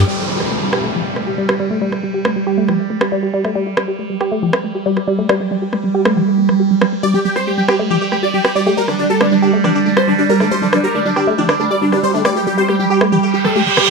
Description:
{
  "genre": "psychedelic trance",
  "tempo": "138 BPM",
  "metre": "4/4",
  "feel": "straight",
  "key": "unclear",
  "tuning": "A4 = 441 Hz",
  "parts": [
    { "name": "evolving wavetable pad", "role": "sustained chords", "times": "0.0-13.9 s", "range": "G3", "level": "-18 LUFS", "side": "right 5 dB", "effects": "phaser, built-in reverb" },
    { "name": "woody wave-folded pluck", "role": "riff", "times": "0.1-13.9 s", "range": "F3 to G4", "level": "-18 LUFS", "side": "equal", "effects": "chorus, auto-pan, ping-pong delay" },
    { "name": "downlifter and reverse cymbal", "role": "sound effects", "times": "0.1-3.6, 13.3-13.9 s", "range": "none", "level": "-19 LUFS", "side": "right 2 dB", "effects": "none" },
    { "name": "electronic rim click", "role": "drums", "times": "0.4-13.9 s", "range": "none", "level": "-21 LUFS", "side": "right 1 dB", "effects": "overdrive" },
    { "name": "dense compressed supersaw", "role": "melody", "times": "7.0-13.8 s", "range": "D4 to D5", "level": "-18 LUFS", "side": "left 1 dB", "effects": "phaser, dub echo" }
  ],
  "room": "moderate plate reverb, RT60 2.3 s",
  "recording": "none",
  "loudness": "-13 LUFS",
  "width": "side -4 dB against mid",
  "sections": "0.1-13.9 A section",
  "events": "reverse cymbal 13.3-13.9",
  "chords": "0.1 G5"
}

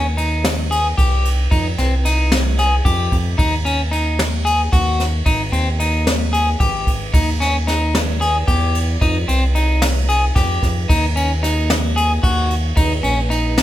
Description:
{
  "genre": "progressive instrumental, band music in an uneven meter",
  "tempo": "224 BPM (eighths)",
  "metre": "7/8",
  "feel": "straight",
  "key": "unclear",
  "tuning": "A4 = 440 Hz",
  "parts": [
    { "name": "electric guitar at the edge of break-up", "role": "arpeggios", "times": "0.0-13.6 s", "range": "C4 to Ab4", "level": "-20 LUFS", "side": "left 2 dB", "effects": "none" },
    { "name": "round analog bass", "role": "bass", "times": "0.0-13.6 s", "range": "Ab1 to F2", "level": "-18 LUFS", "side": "equal", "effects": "none" },
    { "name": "jazz brush drum kit", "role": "drums", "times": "0.2-13.6 s", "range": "kick drum, ride cymbal, snare drum", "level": "-20 LUFS", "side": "equal", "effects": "none" }
  ],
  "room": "moderate stone room reverb, RT60 1.3 s",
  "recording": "band playing live in one room",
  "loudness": "-15 LUFS",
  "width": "side -13 dB against mid",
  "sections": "0.0-13.6 A section",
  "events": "none",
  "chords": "0.0 Eb; 1.5 F7(no3); 3.4 Ebm; 5.3 Ab5; 7.1 Eb; 9.0 F7(no3); 10.9 Eb5"
}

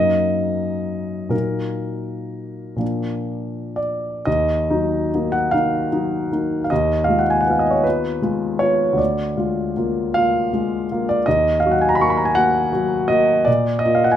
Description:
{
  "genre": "classical, romantic nocturne for solo piano",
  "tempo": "39-56 BPM (dotted quarters)",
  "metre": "6/8",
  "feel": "rubato",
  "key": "Eb minor",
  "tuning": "A4 = 440 Hz",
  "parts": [
    { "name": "warm grand piano", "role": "solo", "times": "0.0-14.2 s", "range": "D2 to Db6", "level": "-17 LUFS", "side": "equal", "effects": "none" }
  ],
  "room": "moderate large studio reverb, RT60 0.9 s",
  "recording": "minimal, uncompressed stereo recording",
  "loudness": "-17 LUFS",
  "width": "side -10 dB against mid",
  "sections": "0.0-4.3 A section; 4.3-14.2 B section",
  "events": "none",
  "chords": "0.0 Ebm/Gb; 1.3 Ebm/Bb; 2.8 Bb; 4.3 Ebm; 6.7 Fm7b5/Eb; 9.0 Bb7/D; 11.3 Ebm; 13.5 Bb5"
}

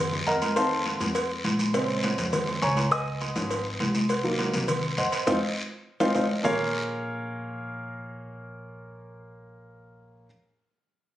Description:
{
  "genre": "latin, salsa",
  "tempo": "204 BPM",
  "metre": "4/4",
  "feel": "straight",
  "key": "Bb minor",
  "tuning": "A4 = 440 Hz",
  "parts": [
    { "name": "upright bass", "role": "bass", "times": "0.0-10.3 s", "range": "Ab1 to Gb2", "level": "-35 LUFS", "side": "equal", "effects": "none" },
    { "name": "agogo bells and timbales", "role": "percussion", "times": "0.1-6.5 s", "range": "none", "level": "-35 LUFS", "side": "right 3 dB", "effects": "none" },
    { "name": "congas", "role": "percussion", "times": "0.1-6.5 s", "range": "none", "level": "-30 LUFS", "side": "left 1 dB", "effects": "none" },
    { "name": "maracas", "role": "percussion", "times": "0.1-6.5 s", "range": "none", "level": "-42 LUFS", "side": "right 3 dB", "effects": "none" },
    { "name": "warm grand piano", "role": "accompaniment", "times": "0.3-10.3 s", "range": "Db3 to Eb6", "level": "-27 LUFS", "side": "right 1 dB", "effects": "none" },
    { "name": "cowbell and bongos", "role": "percussion", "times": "0.3-6.5 s", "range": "none", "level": "-32 LUFS", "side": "left 2 dB", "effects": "none" },
    { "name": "guiro", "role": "percussion", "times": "0.3-6.5 s", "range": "none", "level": "-35 LUFS", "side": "left 1 dB", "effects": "none" }
  ],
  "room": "moderate large studio reverb, RT60 0.9 s",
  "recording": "recorded on a phone in the room, studio reverb",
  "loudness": "-24 LUFS",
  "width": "side -13 dB against mid",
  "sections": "0.0-6.4 A section; 6.4-8.8 B section",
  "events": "grand piano solo 0.0-6.4; drum fill 5.3-6.4; band accent 5.3-6.4",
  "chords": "0.0 Cm7b5 (rootless); 0.6 F7; 1.7 Bbm7; 2.9 Dbadd9; 4.1 Cm7b5; 5.3 F5; 6.4 Bbm7"
}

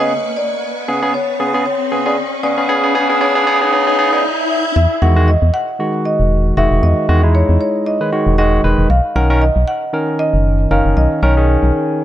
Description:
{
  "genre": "deep house",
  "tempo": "116 BPM",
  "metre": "4/4",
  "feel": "swing 55% on 16ths",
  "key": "E major",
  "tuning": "A4 = 442 Hz",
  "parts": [
    { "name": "marimba with medium mallets", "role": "melody", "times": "0.0-12.0 s", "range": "C#5 to F#5", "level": "-20 LUFS", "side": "equal", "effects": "dub echo" },
    { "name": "barky tine electric piano", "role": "stabs", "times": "0.0-12.0 s", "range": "C#3 to B4", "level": "-16 LUFS", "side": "equal", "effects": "dub echo" },
    { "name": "riser and swell", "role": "sound effects", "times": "0.0-4.8 s", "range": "none", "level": "-21 LUFS", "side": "equal", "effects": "none" },
    { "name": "string machine, violins", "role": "texture", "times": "0.0-4.2 s", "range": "B4 to C#6", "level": "-31 LUFS", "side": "right 1 dB", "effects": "ensemble chorus" },
    { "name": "organ-like FM bass", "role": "bass", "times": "4.8-11.7 s", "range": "E1 to E2", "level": "-13 LUFS", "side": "equal", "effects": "tube saturation" }
  ],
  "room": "light reverb, digital ambience",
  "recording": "high-pass filter",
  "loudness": "-12 LUFS",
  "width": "side -12 dB against mid",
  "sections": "0.0-4.8 A section; 4.8-12.0 B section",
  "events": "build-up 0.0-4.8; riser 0.0-4.8; swell 3.7-4.8; break 4.2-4.8; drop 4.8-12.0",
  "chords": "0.0 C#7(no3); 4.8 Emaj9; 8.9 Bmaj9"
}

